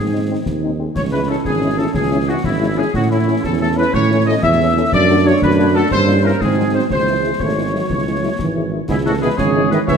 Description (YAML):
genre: military-style march for wind band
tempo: 121 BPM (dotted quarters)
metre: 6/8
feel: straight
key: C# minor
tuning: A4 = 440 Hz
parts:
  - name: mellow trumpet section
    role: melody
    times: 0.0-10.0 s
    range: E4 to E5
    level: -22 LUFS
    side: left 1 dB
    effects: none
  - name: clear woodwind section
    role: second line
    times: 0.0-10.0 s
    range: E4 to E5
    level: -22 LUFS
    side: left 2 dB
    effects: none
  - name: dark trombone section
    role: sustained chords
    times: 0.0-10.0 s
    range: D#3 to D4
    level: -22 LUFS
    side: right 4 dB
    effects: none
  - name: mellow tuba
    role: bass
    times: 0.0-10.0 s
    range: G#1 to A2+20c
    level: -18 LUFS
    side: right 3 dB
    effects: none
  - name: mellow French horn section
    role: accompaniment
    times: 0.1-9.8 s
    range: E3 to F#4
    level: -23 LUFS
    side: left 6 dB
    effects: none
  - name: concert snare drum, concert bass drum and clash cymbals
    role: drums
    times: 0.5-10.0 s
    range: none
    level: -24 LUFS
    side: left 2 dB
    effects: none
  - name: dark euphonium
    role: second line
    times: 8.9-10.0 s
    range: G#2 to E3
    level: -19 LUFS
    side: right 6 dB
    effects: none
room: moderate scoring stage reverb, RT60 1.9 s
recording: none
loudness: -14 LUFS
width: side -6 dB against mid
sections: 0.0-8.9 A section; 8.9-10.0 B section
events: none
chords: 0.0 G#; 1.0 C#m; 2.9 A; 4.9 D/F#; 5.9 Gdim7; 6.4 G#7; 6.9 C#m